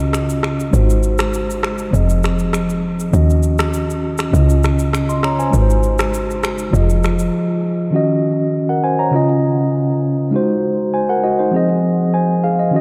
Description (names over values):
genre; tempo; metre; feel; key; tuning
afrobeats; 100 BPM; 4/4; straight; unclear; A4 = 440 Hz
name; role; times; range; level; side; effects
mellow tine electric piano; accompaniment; 0.0-12.8 s; Db3 to C6; -18 LUFS; equal; low-pass filter
woody log drum bass; bass; 0.0-7.3 s; F1 to Eb2; -19 LUFS; equal; none
electronic rim click, shaker and finger snaps; drums; 0.1-7.3 s; none; -27 LUFS; equal; none
room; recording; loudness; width
wet cathedral reverb, RT60 4.9 s; dreamy mix soaked in reverb; -17 LUFS; mono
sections
0.0-7.9 A section; 7.9-12.8 B section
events
filter sweep on tine electric piano 0.0-7.9; break 7.3-7.9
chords
0.0 Dbadd9; 0.7 Ab7; 1.9 Fm7; 3.1 Ebm7; 4.3 Dbadd9; 5.5 Ab7; 6.7 Fm7; 7.9 Ebm7; 9.1 Dbadd9; 10.3 Ab7; 11.5 Fm7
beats
0.14 | 0.73 1.33 1.94 2.54 | 3.13 3.73 4.33 4.93 | 5.54 6.13 6.74 7.33 | 7.93 8.54 9.13 9.73 | 10.34 10.94 11.54 12.13 | 12.73